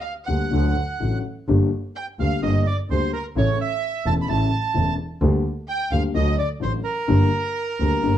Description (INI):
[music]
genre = tango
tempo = 128 BPM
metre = 4/4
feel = rubato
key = G minor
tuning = A4 = 440 Hz
[part]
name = bandoneon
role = melody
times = 0.0-8.2 s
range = Bb4 to B5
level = -27 LUFS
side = right 5 dB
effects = none
[part]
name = warm chamber violin section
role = second line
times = 0.0-8.2 s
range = Bb4 to B5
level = -31 LUFS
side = equal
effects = none
[part]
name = warm upright piano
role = accompaniment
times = 0.3-8.2 s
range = E1 to G4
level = -24 LUFS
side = left 5 dB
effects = none
[part]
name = clear double bass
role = bass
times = 0.3-8.2 s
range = E1 to D2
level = -22 LUFS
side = right 1 dB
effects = none
[sound]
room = moderate studio reverb, RT60 0.8 s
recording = dark, warm production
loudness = -20 LUFS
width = side -11 dB against mid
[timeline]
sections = 0.0-8.2 A section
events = none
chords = 0.0 Gm; 0.5 D; 1.5 Gm; 3.4 A; 5.2 Gm/D; 6.1 D; 7.1 Gm